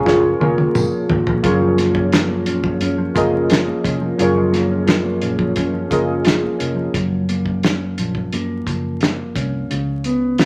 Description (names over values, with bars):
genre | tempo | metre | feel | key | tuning
indie pop, bedroom pop | 87 BPM | 4/4 | straight | F# major | A4 = 443 Hz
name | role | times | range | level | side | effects
mellow electric guitar | accompaniment | 0.0-10.5 s | F#2 to E#4 | -23 LUFS | equal | warbly pitch drift
warbly lo-fi synth keys | accompaniment | 0.0-7.0 s | E#4 to E#5 | -21 LUFS | equal | chorus
vintage muted fingered electric bass | bass | 0.1-10.5 s | E#1 to F#2 | -28 LUFS | equal | none
cloth-damped thuddy drum kit | drums | 0.1-10.5 s | hi-hat, kick drum, snare drum, toms | -22 LUFS | equal | none
tambourine | percussion | 0.7-0.9 s | none | -38 LUFS | equal | none
room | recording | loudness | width
moderate large studio reverb, RT60 0.8 s | vinyl crackle | -18 LUFS | mono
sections
0.0-1.4 A section; 1.4-6.9 B section; 6.9-10.5 C section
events
drum fill 0.1-1.4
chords
0.1 F#maj7; 9.7 C#7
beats
0.05 0.74 | 1.43 2.12 2.81 3.50 | 4.18 4.87 5.56 6.25 | 6.94 7.63 8.32 9.01 | 9.70 10.39